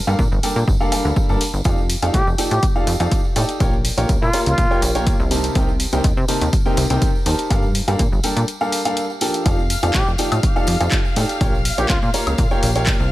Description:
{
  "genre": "piano house",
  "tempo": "123 BPM",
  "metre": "4/4",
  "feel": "straight",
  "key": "F mixolydian",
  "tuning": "A4 = 438 Hz",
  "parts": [
    { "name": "clear grand piano", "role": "riff", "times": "0.1-12.9 s", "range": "C3 to Bb5", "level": "-22 LUFS", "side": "equal", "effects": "sidechain pumping, digital delay" },
    { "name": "plucky analog bass", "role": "bass", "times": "0.1-13.1 s", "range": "F1 to C3", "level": "-21 LUFS", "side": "equal", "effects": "sidechain pumping" },
    { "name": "tambourine", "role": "percussion", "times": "0.1-13.1 s", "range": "none", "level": "-32 LUFS", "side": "right 2 dB", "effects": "none" },
    { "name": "electronic kick drum", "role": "drums", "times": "0.2-13.0 s", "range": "none", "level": "-19 LUFS", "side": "equal", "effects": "none" },
    { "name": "punchy analog drum machine", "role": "drums", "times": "0.4-13.0 s", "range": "handclaps, hi-hat, woodblock", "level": "-25 LUFS", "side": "left 1 dB", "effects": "none" },
    { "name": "trumpet with plunger mute", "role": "melody", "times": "2.1-4.8, 9.9-12.1 s", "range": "F4 to G4", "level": "-25 LUFS", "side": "equal", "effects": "digital delay" },
    { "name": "dark chamber string section", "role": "sustained chords", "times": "9.5-13.1 s", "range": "F5 to F6", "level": "-29 LUFS", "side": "left 3 dB", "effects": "sidechain pumping" }
  ],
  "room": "studio ambience",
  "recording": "none",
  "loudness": "-16 LUFS",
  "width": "side -16 dB against mid",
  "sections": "0.0-13.1 A section",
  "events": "break 8.5-9.5",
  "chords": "0.0 Gm9; 1.7 F13; 3.6 Bbm6; 5.3 Cm7; 7.5 Gm9; 9.5 F13; 11.4 Bbm6"
}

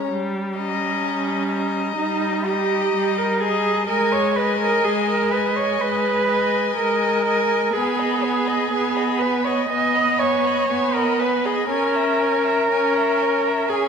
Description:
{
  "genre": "classical, slow romantic movement for string quartet",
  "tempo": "62 BPM",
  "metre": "4/4",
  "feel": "rubato",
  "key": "G# minor",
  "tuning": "A4 = 440 Hz",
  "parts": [
    { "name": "muted violin", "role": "melody", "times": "0.0-13.9 s", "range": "G#5 to B5", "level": "-29 LUFS", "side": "left 8 dB", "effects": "none" },
    { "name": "muted violin", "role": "second line", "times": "0.0-13.9 s", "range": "B4 to E5", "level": "-26 LUFS", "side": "left 7 dB", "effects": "none" },
    { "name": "muted cello", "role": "bass", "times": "0.0-13.9 s", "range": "C#4 to D#5", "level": "-21 LUFS", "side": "right 3 dB", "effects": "none" },
    { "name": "muted viola", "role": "accompaniment", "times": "0.1-13.9 s", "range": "G3 to C#4", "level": "-24 LUFS", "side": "equal", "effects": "none" }
  ],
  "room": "wet scoring stage reverb, RT60 2.0 s",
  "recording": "minimal, uncompressed stereo recording",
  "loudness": "-18 LUFS",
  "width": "side -6 dB against mid",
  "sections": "0.0-13.9 A section",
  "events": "none",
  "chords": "0.1 D#7/G; 3.9 G#m; 7.8 G#m/B; 11.7 A#m7b5/C#"
}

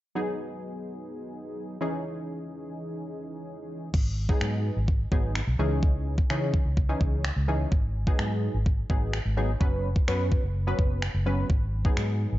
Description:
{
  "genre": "dance-pop",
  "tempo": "127 BPM",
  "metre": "4/4",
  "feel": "straight",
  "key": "G# minor",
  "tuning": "A4 = 440 Hz",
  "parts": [
    { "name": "funky polysynth comp", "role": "accompaniment", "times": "0.2-12.3 s", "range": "E3 to B4", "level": "-32 LUFS", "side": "equal", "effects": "chorus, sidechain pumping" },
    { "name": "vintage muted fingered electric bass", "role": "bass", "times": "3.9-12.4 s", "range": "F#1 to C#3", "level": "-27 LUFS", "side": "equal", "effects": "sidechain pumping" },
    { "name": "pop drum kit", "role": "drums", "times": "3.9-12.1 s", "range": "crash cymbal, finger snaps, kick drum", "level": "-26 LUFS", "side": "equal", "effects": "overdrive" }
  ],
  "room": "light reverb, digital ambience",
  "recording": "dark, warm production, nothing above 7.7 kHz",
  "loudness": "-24 LUFS",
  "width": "side -15 dB against mid",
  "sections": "0.2-3.9 A section; 3.9-12.4 B section",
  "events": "none",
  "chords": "0.2 G#m7; 1.8 C#madd9; 3.9 G#m7; 5.6 C#madd9; 7.7 G#m7; 9.6 F#sus4; 11.5 G#m7"
}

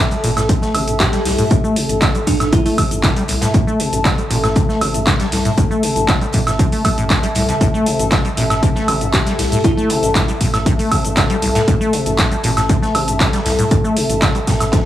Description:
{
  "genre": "acid house",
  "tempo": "118 BPM",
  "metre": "4/4",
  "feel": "straight",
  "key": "A minor",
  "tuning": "A4 = 439 Hz",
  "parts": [
    { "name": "deep acid bass", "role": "riff", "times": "0.0-14.8 s", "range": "A1 to A3", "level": "-20 LUFS", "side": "left 1 dB", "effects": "wide subtle chorus, sidechain pumping, analog delay" },
    { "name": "round analog bass", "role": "bass", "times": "0.0-14.9 s", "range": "A1 to C2", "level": "-23 LUFS", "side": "equal", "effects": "sidechain pumping" },
    { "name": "warbly tape-like pad", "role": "texture", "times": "0.0-14.9 s", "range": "A4 to A5", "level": "-22 LUFS", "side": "left 1 dB", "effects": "chorus, built-in reverb, sidechain pumping" },
    { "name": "booming analog drum machine", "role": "drums", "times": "0.1-14.8 s", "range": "cabasa, handclaps, hi-hat, woodblock", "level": "-20 LUFS", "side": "right 1 dB", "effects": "none" },
    { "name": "open jazz drum kit", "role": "drums", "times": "0.2-14.9 s", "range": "hi-hat, snare drum", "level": "-30 LUFS", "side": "right 1 dB", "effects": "none" },
    { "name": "electronic kick drum", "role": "drums", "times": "0.5-14.8 s", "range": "none", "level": "-17 LUFS", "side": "equal", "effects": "none" },
    { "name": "bell-like FM electric piano", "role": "melody", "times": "1.0-2.7, 9.1-10.4 s", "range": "D4 to G4", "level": "-23 LUFS", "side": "right 1 dB", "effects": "chorus, analog delay" }
  ],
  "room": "light reverb",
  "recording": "dry, gritty hardware recording, small room reverb",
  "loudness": "-13 LUFS",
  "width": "side -12 dB against mid",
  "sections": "0.0-14.9 A section",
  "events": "none",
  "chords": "0.0 Am"
}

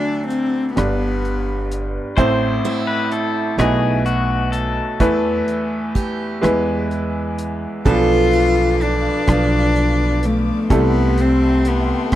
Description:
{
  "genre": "acoustic folk-pop ballad",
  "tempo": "42 BPM (dotted quarters)",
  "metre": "6/8",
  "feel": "straight",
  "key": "unclear",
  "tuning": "A4 = 439 Hz",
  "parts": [
    { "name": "warm cello", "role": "melody", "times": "0.0-1.8, 7.9-12.2 s", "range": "A3 to F4", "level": "-19 LUFS", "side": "left 3 dB", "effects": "none" },
    { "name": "bright upright piano", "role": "accompaniment", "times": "0.0-12.2 s", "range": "G1 to C5", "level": "-20 LUFS", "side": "right 1 dB", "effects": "none" },
    { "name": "cloth-damped thuddy drum kit", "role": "drums", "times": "0.3-12.2 s", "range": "hi-hat, kick drum, rim click", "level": "-19 LUFS", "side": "equal", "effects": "none" },
    { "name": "upright bass", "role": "bass", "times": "0.8-12.2 s", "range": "G1 to E2", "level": "-21 LUFS", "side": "equal", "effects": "none" },
    { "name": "pedal steel guitar", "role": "second line", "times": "2.2-6.4 s", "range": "F#4 to C5", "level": "-24 LUFS", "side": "left 6 dB", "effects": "none" },
    { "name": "picked steel-string acoustic guitar", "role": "arpeggios", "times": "2.6-11.1 s", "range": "E4 to A4", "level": "-25 LUFS", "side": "right 7 dB", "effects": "none" },
    { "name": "muted studio string section", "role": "sustained chords", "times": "7.8-12.2 s", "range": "A4 to D6", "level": "-30 LUFS", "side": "left 5 dB", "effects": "none" }
  ],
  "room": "little or no reverb",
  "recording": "dry, close 1970s-style studio recording",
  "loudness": "-16 LUFS",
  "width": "side -13 dB against mid",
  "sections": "0.0-7.9 A section; 7.9-12.2 B section",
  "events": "none",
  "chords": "0.0 D; 0.8 G; 2.2 Am; 3.6 B7; 5.0 Esus4; 6.4 E; 7.9 Bdim; 10.7 Am7/C"
}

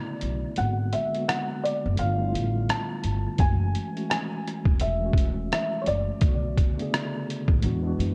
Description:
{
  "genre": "lo-fi hip hop",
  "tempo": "85 BPM",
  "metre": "4/4",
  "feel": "swing 62% on 16ths",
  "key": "unclear",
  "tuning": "A4 = 441 Hz",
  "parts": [
    { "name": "felt-muted upright piano", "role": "melody", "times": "0.0-7.2 s", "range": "C#5 to A5", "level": "-33 LUFS", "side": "equal", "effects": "low-pass filter, tape echo" },
    { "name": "mellow tine electric piano", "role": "accompaniment", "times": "0.0-8.1 s", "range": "C#3 to G#4", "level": "-33 LUFS", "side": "equal", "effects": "low-pass filter" },
    { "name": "upright bass", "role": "bass", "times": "0.2-8.1 s", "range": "E1 to F#2", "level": "-30 LUFS", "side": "equal", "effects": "none" },
    { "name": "trip hop sampler-style drum kit", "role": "drums", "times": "0.2-8.1 s", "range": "hi-hat, kick drum, rim click", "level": "-28 LUFS", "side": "equal", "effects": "none" }
  ],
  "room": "light reverb",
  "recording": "worn, warbling old tape, cassette tape, warbly pitch drift",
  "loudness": "-26 LUFS",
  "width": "mono",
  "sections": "0.0-8.1 A section",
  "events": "kick muted 0.6-3.4",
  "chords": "0.0 Bm7; 0.6 G#m7b5; 2.0 G9; 3.4 F#m9; 6.2 Bm7; 7.6 E7"
}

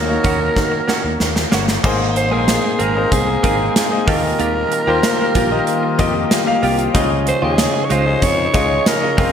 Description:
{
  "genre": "1980s-style pop",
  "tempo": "94 BPM",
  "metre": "4/4",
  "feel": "straight",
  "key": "unclear",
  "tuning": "A4 = 442 Hz",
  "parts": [
    { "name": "raspy alto saxophone", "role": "melody", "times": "0.0-9.3 s", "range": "Ab4 to Db5", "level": "-20 LUFS", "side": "right 2 dB", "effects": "none" },
    { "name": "clear concert grand piano", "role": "accompaniment", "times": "0.0-9.3 s", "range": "Ab2 to F5", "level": "-20 LUFS", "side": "left 3 dB", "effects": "none" },
    { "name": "sustaining fretless electric bass", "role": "bass", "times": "0.0-9.3 s", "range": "F1 to Eb3", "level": "-22 LUFS", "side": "equal", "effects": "none" },
    { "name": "direct-recorded clean electric guitar", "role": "riff", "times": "0.1-9.3 s", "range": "Ab3 to Ab4", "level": "-24 LUFS", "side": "right 3 dB", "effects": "analog chorus, digital delay" },
    { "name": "gated 80s drum kit", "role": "drums", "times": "0.2-9.3 s", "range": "crash cymbal, hi-hat, kick drum, snare drum", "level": "-19 LUFS", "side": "equal", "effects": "gated reverb" },
    { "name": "glassy FM pad", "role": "sustained chords", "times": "2.6-9.3 s", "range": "Bb2 to F4", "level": "-26 LUFS", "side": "left 1 dB", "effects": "ensemble chorus, built-in reverb" }
  ],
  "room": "wet lush hall reverb, RT60 2.6 s",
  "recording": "bright 1980s-style digital production",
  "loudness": "-14 LUFS",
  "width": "side -8 dB against mid",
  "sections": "0.0-1.8 A section; 1.8-9.3 B section",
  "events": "drum fill 0.6-1.8",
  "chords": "0.0 Ebm7; 1.8 Abadd9; 4.1 Ebadd9; 6.9 Dbadd9"
}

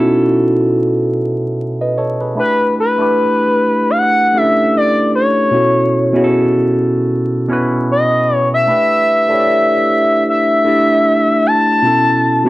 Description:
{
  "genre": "R&B",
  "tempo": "76 BPM",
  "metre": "4/4",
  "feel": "swing 58% on 16ths",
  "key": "unclear",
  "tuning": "A4 = 440 Hz",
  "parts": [
    { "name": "barky tine electric piano", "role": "accompaniment", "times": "0.0-12.5 s", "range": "B2 to D#5", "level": "-14 LUFS", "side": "right 1 dB", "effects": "overdrive, phaser" },
    { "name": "expressive portamento lead", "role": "melody", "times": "2.4-12.5 s", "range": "B4 to A5", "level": "-12 LUFS", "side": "left 1 dB", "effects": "chorus" }
  ],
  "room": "moderate studio ambience, RT60 0.5 s",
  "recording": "worn, warbling old tape, cassette tape, vinyl crackle, warbly pitch drift",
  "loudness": "-11 LUFS",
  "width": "side -17 dB against mid",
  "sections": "0.0-12.5 A section",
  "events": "none",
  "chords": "0.0 B9sus4; 2.4 A9sus4; 5.5 B9sus4; 8.7 A9sus4; 11.8 B9sus4"
}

